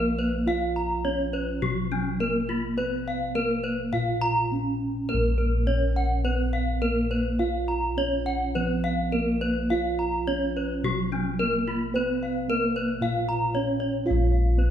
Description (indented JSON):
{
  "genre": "Balinese gamelan",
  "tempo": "104-116 BPM",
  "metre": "4/4",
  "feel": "straight",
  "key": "Bb pelog",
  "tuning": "A4 = 440 Hz",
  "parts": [
    { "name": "gamelan-type bronze metallophone", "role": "melody", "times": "0.0-14.7 s", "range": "Gb3 to F4", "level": "-29 LUFS", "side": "right 2 dB", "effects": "none" },
    { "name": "gamelan-type bronze metallophone", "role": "arpeggios", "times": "0.0-14.7 s", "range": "Db4 to Bb5", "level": "-28 LUFS", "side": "left 1 dB", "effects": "none" },
    { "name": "gamelan-type bossed gongs", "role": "bass", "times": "0.0-14.7 s", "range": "Bb1 to Cb5+35c", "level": "-27 LUFS", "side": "equal", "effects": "none" }
  ],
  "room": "wet recital hall reverb, RT60 1.5 s",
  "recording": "recorded in a church or concert hall",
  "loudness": "-23 LUFS",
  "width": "side -9 dB against mid",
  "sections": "0.0-14.1 A section",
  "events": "none",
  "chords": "none",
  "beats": "| 0.47 1.05 1.63 2.21 | 2.78 3.36 3.94 4.51 | 5.09 5.67 6.24 6.82 | 7.40 7.97 8.55 9.13 | 9.71 10.28 10.84 11.40 | 11.95 12.49 13.02 13.55 | 14.06 14.58"
}